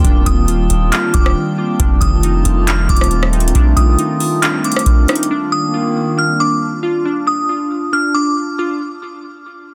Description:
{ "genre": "hip hop, atmospheric cloud-rap", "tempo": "137 BPM", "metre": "4/4", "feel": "half-time", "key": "Eb lydian", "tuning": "A4 = 439 Hz", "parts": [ { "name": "hollow soft pad", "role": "sustained chords", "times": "0.0-7.0 s", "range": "Eb3 to F4", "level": "-22 LUFS", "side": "equal", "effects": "chorus, sidechain pumping" }, { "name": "glassy digital keys", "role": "arpeggios", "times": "0.0-8.8 s", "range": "D4 to F4", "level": "-24 LUFS", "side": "equal", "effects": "chorus, low-pass filter, tape echo" }, { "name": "long sustained 808-style bass", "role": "bass", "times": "0.0-3.5 s", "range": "Eb1 to F1", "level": "-18 LUFS", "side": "equal", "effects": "none" }, { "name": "booming analog drum machine", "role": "drums", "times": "0.0-5.3 s", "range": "handclaps, hi-hat, kick drum, rim click", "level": "-16 LUFS", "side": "equal", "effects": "none" }, { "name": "drifting glass-harmonics texture", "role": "texture", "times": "0.0-3.5 s", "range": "D4 to A5", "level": "-31 LUFS", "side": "equal", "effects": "chorus, built-in reverb" }, { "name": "glassy synth bell", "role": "melody", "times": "0.3-8.4 s", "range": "D6 to F6", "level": "-22 LUFS", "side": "equal", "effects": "chorus, phaser, low-pass filter, tape echo" } ], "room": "little or no reverb", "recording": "dense, heavily limited modern master", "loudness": "-15 LUFS", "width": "mono", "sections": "0.0-8.8 A section", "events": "break 1.4-1.8", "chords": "0.0 Ebmaj9; 1.8 F13; 5.3 Ebmaj9", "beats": "| 0.04 0.48 0.92 1.36 | 1.80 2.23 2.67 3.11 | 3.55 3.99 4.42 4.86 | 5.30 5.74 6.18 6.61 | 7.05 7.49 7.93 8.37" }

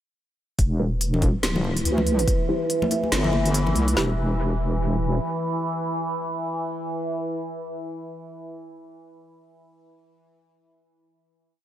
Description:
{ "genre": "deep dubstep", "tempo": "142 BPM", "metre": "4/4", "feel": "swing 59% on 16ths, half-time", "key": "E minor", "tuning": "A4 = 440 Hz", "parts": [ { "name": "overtone-sweeping drone", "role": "sustained chords", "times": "1.8-8.2 s", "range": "E3", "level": "-27 LUFS", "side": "right 1 dB", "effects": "chorus, built-in reverb, phaser, vintage 12-bit sampler grit" }, { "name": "deep soft wobble bass", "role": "bass", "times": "0.6-5.2 s", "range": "E1 to D2", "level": "-23 LUFS", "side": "equal", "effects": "chorus" }, { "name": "deep house drum kit", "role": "drums", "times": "0.6-4.1 s", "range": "kick drum, snare drum", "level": "-23 LUFS", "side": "equal", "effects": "none" }, { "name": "deep house drum kit", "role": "drums", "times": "0.6-4.0 s", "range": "hi-hat, snare drum", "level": "-29 LUFS", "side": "equal", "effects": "none" }, { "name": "filtered dub chord stab", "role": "stabs", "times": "0.8-8.7 s", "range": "E4 to C5", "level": "-32 LUFS", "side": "right 1 dB", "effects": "phaser, lush chorus, dub echo" }, { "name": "congas and bongos", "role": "percussion", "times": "1.1-3.9 s", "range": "none", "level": "-29 LUFS", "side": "left 2 dB", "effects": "dub echo" } ], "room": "moderate cathedral reverb, RT60 5.6 s", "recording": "dreamy mix soaked in reverb", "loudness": "-22 LUFS", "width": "side -12 dB against mid", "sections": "0.6-4.0 build; 4.0-7.3 final chord", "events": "build-up 0.6-4.0; filter sweep on synth drone 0.6-4.0", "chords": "0.6 Em; 2.3 C; 4.0 Em", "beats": "| 0.59 1.01 1.43 1.85 | 2.28 2.70 3.12 3.54 | 3.97 4.39 4.81 5.24 | 5.66 6.08 6.50 6.93" }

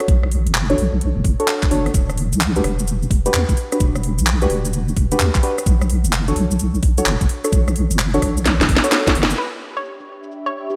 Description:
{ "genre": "UK garage, two-step garage", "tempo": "129 BPM", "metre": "4/4", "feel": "swing 65% on 16ths", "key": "E dorian", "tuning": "A4 = 440 Hz", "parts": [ { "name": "deep mellow chord stab", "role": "stabs", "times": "0.0-10.8 s", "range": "D4 to C#5", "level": "-25 LUFS", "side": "equal", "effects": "analog chorus, vintage 12-bit sampler grit, delay" }, { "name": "garage drum kit", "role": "drums", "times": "0.0-10.8 s", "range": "cabasa, handclaps, hi-hat, rim click, snare drum", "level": "-24 LUFS", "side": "equal", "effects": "low-pass filter on hats, studio reverb, low-pass filter on snare, low-pass filter on perc, gated reverb" }, { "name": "deep soft wobble bass", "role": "bass", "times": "0.1-9.3 s", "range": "E1 to E2", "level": "-21 LUFS", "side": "equal", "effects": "chorus" }, { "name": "electronic kick drum", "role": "drums", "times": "0.1-9.1 s", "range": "none", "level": "-20 LUFS", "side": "equal", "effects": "studio reverb" }, { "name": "hollow square pluck", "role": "melody", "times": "9.4-10.6 s", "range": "B4 to C#5", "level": "-29 LUFS", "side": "equal", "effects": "chorus, delay" }, { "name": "ethereal airy pad", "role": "texture", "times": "9.8-10.8 s", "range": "D4 to B5", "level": "-32 LUFS", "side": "equal", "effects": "ensemble chorus, built-in reverb, sidechain pumping" } ], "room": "light reverb", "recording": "bright 1980s-style digital production", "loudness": "-18 LUFS", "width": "mono", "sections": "0.0-9.4 A section; 9.4-10.8 B section", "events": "drum fill 8.5-9.4; band accent 9.2", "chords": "0.0 Bm7; 1.9 Em7; 5.7 Bm7; 9.4 Em7", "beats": "| 0.08 0.55 1.01 1.48 | 1.94 2.41 2.87 3.34 | 3.80 4.27 4.73 5.20 | 5.66 6.13 6.59 7.06 | 7.53 7.99 8.46 8.92 | 9.38 9.85 10.31" }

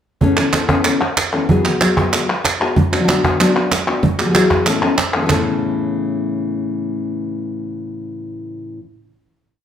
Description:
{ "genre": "flamenco", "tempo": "189 BPM", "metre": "4/4", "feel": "straight", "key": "A major", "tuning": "A4 = 439 Hz", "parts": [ { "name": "nylon-string guitar", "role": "accompaniment", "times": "0.2-8.8 s", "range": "A2 to A4", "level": "-18 LUFS", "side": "left 2 dB", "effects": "none" }, { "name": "cajon", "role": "percussion", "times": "0.2-5.4 s", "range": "none", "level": "-20 LUFS", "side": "right 3 dB", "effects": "none" }, { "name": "palmas hand claps", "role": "percussion", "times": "0.4-5.4 s", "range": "none", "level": "-18 LUFS", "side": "right 2 dB", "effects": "none" } ], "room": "moderate large studio reverb, RT60 1.2 s", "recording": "band playing live in one room", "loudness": "-14 LUFS", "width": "side -9 dB against mid", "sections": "0.2-5.3 groove; 5.3-7.9 final chord", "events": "none", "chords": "0.2 Aadd9; 1.5 Eadd9; 2.8 D6; 4.0 Eadd9; 4.7 Aadd9", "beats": "| 0.21 0.53 0.85 1.17 | 1.49 1.81 2.13 2.45 | 2.76 3.08 3.40 3.71 | 4.03 4.35 4.67 4.98 | 5.30 5.62 5.94 6.25 | 6.57 6.89 7.21 7.53" }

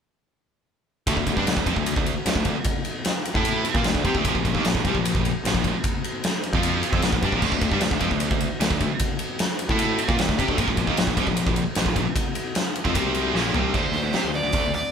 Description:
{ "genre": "hard rock", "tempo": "151 BPM", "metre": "4/4", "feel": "straight", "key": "D minor", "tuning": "A4 = 440 Hz", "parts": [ { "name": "heavy high-gain guitar", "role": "riff", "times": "1.1-14.8 s", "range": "Bb2 to A4", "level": "-27 LUFS", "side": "right 8 dB", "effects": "distortion" }, { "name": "sludgy distorted guitar", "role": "riff", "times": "1.1-14.8 s", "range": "Bb2 to A4", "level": "-28 LUFS", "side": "left 7 dB", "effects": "overdrive" }, { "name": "modern bright picked electric bass", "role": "bass", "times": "1.1-14.8 s", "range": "Bb1 to C3", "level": "-28 LUFS", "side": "equal", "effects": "none" }, { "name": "big rock drum kit", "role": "drums", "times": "1.1-14.8 s", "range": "crash cymbal, hi-hat, kick drum, ride cymbal, snare drum, toms", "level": "-24 LUFS", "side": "equal", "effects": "none" }, { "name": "nasal lead guitar with a parked wah", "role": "melody", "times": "13.8-14.9 s", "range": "C5 to D5", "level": "-26 LUFS", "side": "left 1 dB", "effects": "overdrive" } ], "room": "light reverb", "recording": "band playing live in one room", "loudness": "-20 LUFS", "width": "side -7 dB against mid", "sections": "1.1-13.7 A section; 13.7-14.9 B section", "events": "drum fill 13.3-13.7", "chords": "1.1 Dm; 4.2 Bb5; 7.4 Dm; 10.6 Bb5; 13.0 C5; 13.3 Bb5; 13.7 D5", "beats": "| 1.07 1.47 1.86 2.26 | 2.66 3.06 3.45 3.85 | 4.25 4.65 5.04 5.44 | 5.84 6.24 6.63 7.03 | 7.42 7.82 8.22 8.61 | 9.01 9.40 9.80 10.20 | 10.59 10.98 11.38 11.77 | 12.16 12.56 12.95 13.35 | 13.74 14.14 14.53" }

